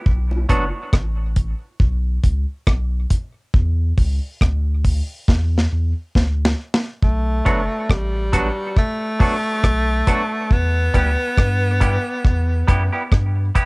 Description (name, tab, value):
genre	dub reggae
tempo	69 BPM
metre	4/4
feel	swing 56% on 16ths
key	B minor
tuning	A4 = 438 Hz
part	warm sub bass	bass	0.1-13.5 s	F#1 to G2	-20 LUFS	equal	none
part	deep reggae drum kit	drums	0.1-13.7 s	hi-hat, kick drum, rim click, snare drum	-17 LUFS	equal	cassette tape
part	bongos	percussion	0.3-0.5 s	none	-34 LUFS	right 1 dB	tape echo
part	semi-hollow electric guitar	accompaniment	0.5-0.6, 7.5-13.7 s	F#3 to G4	-24 LUFS	right 1 dB	spring reverb, high-pass filter, cassette tape, tape echo
part	breathy tenor saxophone	melody	7.0-13.6 s	G3 to B3	-22 LUFS	equal	tape echo
room	light reverb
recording	home recording on cassette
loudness	-17 LUFS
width	side -27 dB against mid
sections	0.0-7.0 A section; 7.0-13.7 B section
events	break 0.0-7.0; drum fill 5.3-7.0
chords	0.1 B5; 3.5 N.C.; 7.0 Bm; 10.5 Em